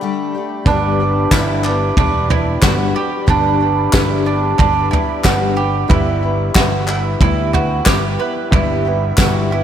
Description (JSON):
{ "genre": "indie folk with a building arrangement", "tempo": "92 BPM", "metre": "4/4", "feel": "straight", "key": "unclear", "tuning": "A4 = 442 Hz", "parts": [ { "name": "picked twelve-string acoustic guitar", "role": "accompaniment", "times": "0.0-9.6 s", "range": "G2 to G4", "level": "-21 LUFS", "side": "left 5 dB", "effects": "none" }, { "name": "warm brass ensemble", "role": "sustained chords", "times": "0.0-9.6 s", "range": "G3 to B5", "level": "-29 LUFS", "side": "right 1 dB", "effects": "none" }, { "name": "clear upright piano", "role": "accompaniment", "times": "0.7-9.6 s", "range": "G1 to E5", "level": "-27 LUFS", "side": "right 1 dB", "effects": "none" }, { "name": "bowl-back mandolin", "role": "arpeggios", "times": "0.7-9.6 s", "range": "D4 to B4", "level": "-19 LUFS", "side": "right 6 dB", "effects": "tape echo" }, { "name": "fingered electric bass", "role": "bass", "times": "0.7-9.6 s", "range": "E1 to D2", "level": "-20 LUFS", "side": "equal", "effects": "none" }, { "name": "soft brush drum kit", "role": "drums", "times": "0.7-9.3 s", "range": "kick drum, snare drum, toms", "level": "-16 LUFS", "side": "equal", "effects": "none" }, { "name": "group handclap", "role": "percussion", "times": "1.3-9.3 s", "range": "none", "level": "-24 LUFS", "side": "left 3 dB", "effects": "slapback echo" }, { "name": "tambourine", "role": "percussion", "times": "1.3-9.3 s", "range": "none", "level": "-34 LUFS", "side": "right 7 dB", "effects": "none" } ], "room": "moderate lush hall reverb, RT60 2.8 s", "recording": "big arena sound", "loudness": "-13 LUFS", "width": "side -9 dB against mid", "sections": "0.0-9.6 A section", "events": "none", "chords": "0.0 Dsus4; 0.7 G; 5.9 Em/G" }